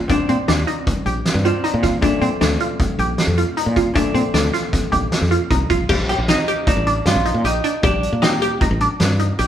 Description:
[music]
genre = progressive instrumental, band music in an uneven meter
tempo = 155 BPM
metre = 5/4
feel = straight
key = unclear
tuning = A4 = 439 Hz
[part]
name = vintage hollow-body jazz guitar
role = accompaniment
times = 0.0-8.6 s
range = Bb2 to G4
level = -24 LUFS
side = equal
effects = none
[part]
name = resonant blip pluck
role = arpeggios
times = 0.0-9.5 s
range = C4 to G4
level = -21 LUFS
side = equal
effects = phaser
[part]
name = woody fretless electric bass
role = bass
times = 0.0-9.5 s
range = A1 to Bb2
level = -21 LUFS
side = equal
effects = none
[part]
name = oversized low-tuned drum kit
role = drums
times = 0.1-9.5 s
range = crash cymbal, hi-hat, kick drum, snare drum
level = -20 LUFS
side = equal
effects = none
[sound]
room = moderate stone room reverb, RT60 1.3 s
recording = band playing live in one room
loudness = -16 LUFS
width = side -10 dB against mid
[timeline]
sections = 0.0-5.9 A section; 5.9-9.5 B section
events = hollow-body jazz guitar solo 5.9-9.5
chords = 0.0 Cmadd9/Bb; 2.0 Bbmaj7; 5.9 Ebmaj7

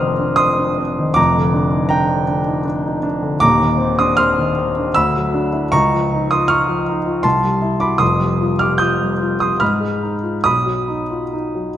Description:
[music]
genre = classical, impressionist solo piano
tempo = 69-82 BPM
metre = 3/4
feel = rubato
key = unclear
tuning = A4 = 438 Hz
[part]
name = warm grand piano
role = solo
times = 0.0-11.8 s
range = Eb1 to G6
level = -14 LUFS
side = equal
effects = none
[sound]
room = wet concert hall reverb, RT60 2.3 s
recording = none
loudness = -14 LUFS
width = side -11 dB against mid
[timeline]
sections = 0.0-11.8 A section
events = none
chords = 0.0 F5; 1.2 Gm7/F; 3.4 Ebsus2; 5.0 D69; 5.7 Db69; 7.2 C6; 8.0 Fsus2; 9.6 Abm6; 10.5 B

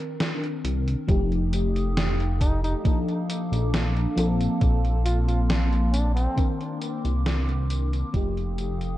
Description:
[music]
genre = vaporwave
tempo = 68 BPM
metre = 4/4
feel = straight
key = unclear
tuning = A4 = 442 Hz
[part]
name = FM electric piano with soft pad layer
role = accompaniment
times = 0.0-9.0 s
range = Eb3 to Bb4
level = -28 LUFS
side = left 2 dB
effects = analog chorus, vintage 12-bit sampler grit, tape echo
[part]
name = gated 80s digital drum machine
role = drums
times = 0.2-9.0 s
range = hi-hat, snare drum, tambourine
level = -30 LUFS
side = equal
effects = gated reverb, gated reverb snare, vintage 12-bit sampler grit
[part]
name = chorused synth bass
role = bass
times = 0.6-9.0 s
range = F1 to C2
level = -24 LUFS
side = equal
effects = none
[part]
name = warbly tape-like pad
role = sustained chords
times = 1.8-9.0 s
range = Bb3 to Eb6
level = -35 LUFS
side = right 1 dB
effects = chorus, built-in reverb
[part]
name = electronic kick drum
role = drums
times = 1.1-8.3 s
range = none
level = -22 LUFS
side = equal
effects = vintage 12-bit sampler grit
[part]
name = mellow flugelhorn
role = melody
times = 2.4-6.5 s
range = C4 to F4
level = -34 LUFS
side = equal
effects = tape echo
[sound]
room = light reverb, digital ambience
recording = echo-heavy mix, cassette tape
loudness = -22 LUFS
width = side -15 dB against mid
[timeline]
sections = 0.0-9.0 A section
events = fade-out 5.8-9.0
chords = 0.0 Cm9; 1.1 F9; 2.8 Bbmaj7; 4.2 Bbmaj7sus2; 6.4 Cm9; 8.1 F9

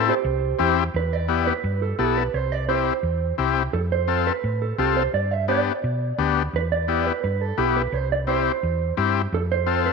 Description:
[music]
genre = latin, cumbia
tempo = 172 BPM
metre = 4/4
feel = straight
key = C major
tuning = A4 = 441 Hz
[part]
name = combo organ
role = accompaniment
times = 0.0-9.9 s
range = B3 to A4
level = -24 LUFS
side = left 13 dB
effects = none
[part]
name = hollow-body short-scale fingered electric bass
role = bass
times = 0.0-9.9 s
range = B1 to B2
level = -25 LUFS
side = equal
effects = none
[part]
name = mellow electric guitar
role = melody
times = 0.1-9.9 s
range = G4 to E5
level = -25 LUFS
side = right 10 dB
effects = spring reverb
[sound]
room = light reverb, digital ambience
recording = 1960s-style stereo with parts hard left and right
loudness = -20 LUFS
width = side -4 dB against mid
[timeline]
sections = 0.9-9.9 A section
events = none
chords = 0.2 C; 0.9 Em7; 2.3 C; 3.7 F; 5.1 G; 6.5 Em7; 7.9 C; 9.3 F

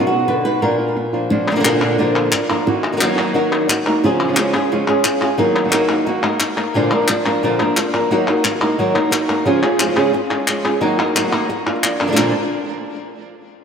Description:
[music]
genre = flamenco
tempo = 177 BPM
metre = 4/4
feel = straight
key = Bb phrygian dominant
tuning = A4 = 440 Hz
[part]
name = flamenco guitar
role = melody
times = 0.0-12.3 s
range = Bb2 to B4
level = -17 LUFS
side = equal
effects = lush chorus, ping-pong delay
[part]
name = flamenco guitar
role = stabs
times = 0.0-12.3 s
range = Bb2 to F#4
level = -21 LUFS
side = right 2 dB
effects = ping-pong delay
[part]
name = palmas hand claps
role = percussion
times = 1.5-12.3 s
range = none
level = -21 LUFS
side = left 3 dB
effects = none
[sound]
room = wet lush hall reverb, RT60 2.8 s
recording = dreamy mix soaked in reverb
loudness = -15 LUFS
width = side -6 dB against mid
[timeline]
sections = 0.0-1.3 A section; 1.3-12.2 B section; 12.2-13.5 C section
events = none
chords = 0.0 B; 0.6 Bb; 2.7 Ebm; 4.0 Db; 5.4 Ebm; 6.8 Bb; 8.1 Ebm; 9.5 Db; 10.8 Ebm; 11.5 Bb

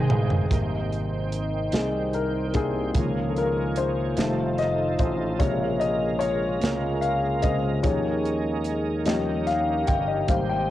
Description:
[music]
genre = slow gospel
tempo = 49 BPM (dotted quarters)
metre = 6/8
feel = straight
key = Ab major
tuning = A4 = 441 Hz
[part]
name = dark upright piano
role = accompaniment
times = 0.0-10.7 s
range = Ab2 to G5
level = -26 LUFS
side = left 4 dB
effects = cassette tape
[part]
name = bright tonewheel organ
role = sustained chords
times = 0.0-10.7 s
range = Eb3 to G5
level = -34 LUFS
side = right 7 dB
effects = slow rotary speaker, overdrive, chorus vibrato, cassette tape
[part]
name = slap bass with an envelope filter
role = bass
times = 0.0-10.7 s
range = F1 to Eb2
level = -28 LUFS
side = right 1 dB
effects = none
[part]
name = crisp fusion drum kit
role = drums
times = 0.1-10.5 s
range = hi-hat, kick drum, snare drum, toms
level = -27 LUFS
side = right 1 dB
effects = cassette tape
[part]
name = mellow French horn section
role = sustained chords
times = 0.5-10.7 s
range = Eb3 to C5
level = -32 LUFS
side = equal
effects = cassette tape
[sound]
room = moderate spring reverb, RT60 2.0 s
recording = home recording on cassette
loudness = -22 LUFS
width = side -13 dB against mid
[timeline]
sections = 0.5-10.7 A section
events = drum fill 0.0-0.5; upright piano solo 0.5-10.7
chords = 0.0 Abmaj7; 3.0 Db6; 4.2 F7; 5.4 Bbm7; 7.8 Eb7sus4; 9.1 Eb7

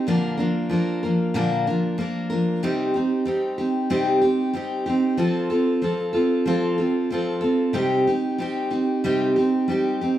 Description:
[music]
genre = rock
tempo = 94 BPM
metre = 4/4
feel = straight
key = C dorian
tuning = A4 = 438 Hz
[part]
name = picked steel-string acoustic guitar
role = solo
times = 0.0-10.2 s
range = Bb2 to Bb4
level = -20 LUFS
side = equal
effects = none
[sound]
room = moderate large studio reverb, RT60 1.0 s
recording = band playing live in one room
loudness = -20 LUFS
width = side -12 dB against mid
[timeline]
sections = 0.0-10.2 A section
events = none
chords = 0.1 Bb; 2.6 Cm; 5.2 F; 7.7 Cm

